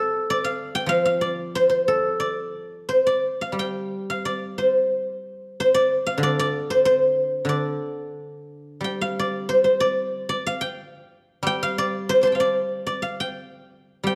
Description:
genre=chinese traditional, Chinese solo plucked strings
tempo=86-98 BPM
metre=2/4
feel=rubato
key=D yu mode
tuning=A4 = 439 Hz
part: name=guzheng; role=solo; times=0.0-14.2 s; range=D3 to D6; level=-23 LUFS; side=equal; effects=none
room=moderate recital hall reverb, RT60 1.6 s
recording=dark, warm production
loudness=-23 LUFS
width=mono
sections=0.0-8.8 A section; 8.8-14.2 B section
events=none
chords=none

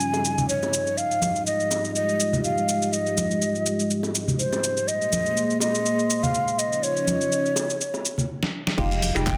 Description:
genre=deep house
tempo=123 BPM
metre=4/4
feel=swing 55% on 16ths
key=F minor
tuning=A4 = 440 Hz
part: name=breathy mellow jazz flute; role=melody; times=0.0-9.4 s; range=C5 to Ab5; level=-28 LUFS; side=equal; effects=digital delay
part: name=dark analog pad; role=sustained chords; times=0.0-9.4 s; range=F3 to C6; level=-30 LUFS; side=equal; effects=chorus, sidechain pumping
part: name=dusty soul sampler-style drum kit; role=drums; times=0.0-9.4 s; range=crash cymbal, finger snaps, handclaps, hi-hat, shaker, snare drum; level=-30 LUFS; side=equal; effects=none
part: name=bongos and congas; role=percussion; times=0.1-9.2 s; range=none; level=-32 LUFS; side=equal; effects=none
part: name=filtered dub chord stab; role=stabs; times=8.8-9.4 s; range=G3 to G4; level=-31 LUFS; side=equal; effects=phaser, sidechain pumping
part: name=round analog bass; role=bass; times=8.8-9.4 s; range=F1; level=-29 LUFS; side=equal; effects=tube saturation
part: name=crisp fusion drum kit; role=drums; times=8.8-9.4 s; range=ride cymbal, snare drum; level=-43 LUFS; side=equal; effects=none
part: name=electronic kick drum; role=drums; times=8.8-9.4 s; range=none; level=-29 LUFS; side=equal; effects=none
room=light reverb, studio reverb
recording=none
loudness=-24 LUFS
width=mono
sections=0.0-8.8 A section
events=filter sweep on analog synth pad 0.0-8.8; drum fill 8.4-8.8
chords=0.0 Dbmaj9#11; 1.0 Fm9; 4.9 Abmaj9; 6.6 Dbmaj9#11; 8.8 Fm9

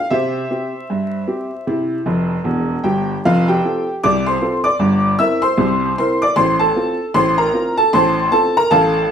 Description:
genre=ragtime piano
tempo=77 BPM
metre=2/4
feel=swing 60% on 16ths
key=F major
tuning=A4 = 439 Hz
part: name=clear upright piano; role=solo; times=0.0-9.1 s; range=E1 to E6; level=-14 LUFS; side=equal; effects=none
room=wet large studio reverb, RT60 0.9 s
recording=band playing live in one room, vinyl crackle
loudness=-14 LUFS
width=side -8 dB against mid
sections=0.0-3.2 A section; 3.2-9.1 B section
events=upright piano fill 2.1-3.2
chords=0.1 C; 3.2 F; 4.8 C7/G; 6.4 F/A

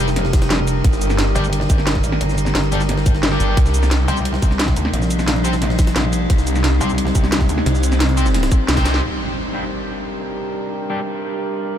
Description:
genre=dark technical drum and bass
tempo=176 BPM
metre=4/4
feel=straight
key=G minor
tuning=A4 = 440 Hz
part: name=metallic inharmonic drone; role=sustained chords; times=0.0-11.8 s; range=C3 to Bb4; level=-23 LUFS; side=equal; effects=chorus, built-in reverb, sidechain pumping
part: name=distorted electric guitar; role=stabs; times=0.0-11.0 s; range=G3 to C5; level=-27 LUFS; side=left 2 dB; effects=distortion, low-pass filter, ping-pong delay
part: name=metallic wobble bass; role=bass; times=0.0-7.6 s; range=F1 to D2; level=-19 LUFS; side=equal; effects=chorus, tube saturation
part: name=drum and bass drum kit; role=drums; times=0.1-9.0 s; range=hi-hat, shaker, snare drum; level=-24 LUFS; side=equal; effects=low-pass filter on hats, low-pass filter on perc, low-pass filter on snare, low-pass filter on toms, low-pass filter on cymbals, low-pass filter on room
part: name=jungle sampler-style drum kit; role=drums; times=0.1-8.9 s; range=hi-hat, snare drum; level=-31 LUFS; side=right 1 dB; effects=none
part: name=electronic kick drum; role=drums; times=0.3-8.8 s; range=none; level=-16 LUFS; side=equal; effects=none
part: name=snarling distorted saw bass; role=bass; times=0.8-1.3, 3.4-4.1, 6.3-9.0 s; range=G1 to C2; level=-17 LUFS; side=equal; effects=distortion, sidechain pumping
part: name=zap and impact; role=sound effects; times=8.5-10.4 s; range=none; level=-36 LUFS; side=right 1 dB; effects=none
room=light reverb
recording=none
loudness=-15 LUFS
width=side -10 dB against mid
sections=0.0-9.0 A section; 9.0-11.8 B section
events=drop 0.0-9.0; drum fill 8.8; band accent 8.9; impact 9.0-10.4; filter sweep on synth drone 9.0-11.8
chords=0.0 Gm; 3.6 Cm; 9.0 Gm

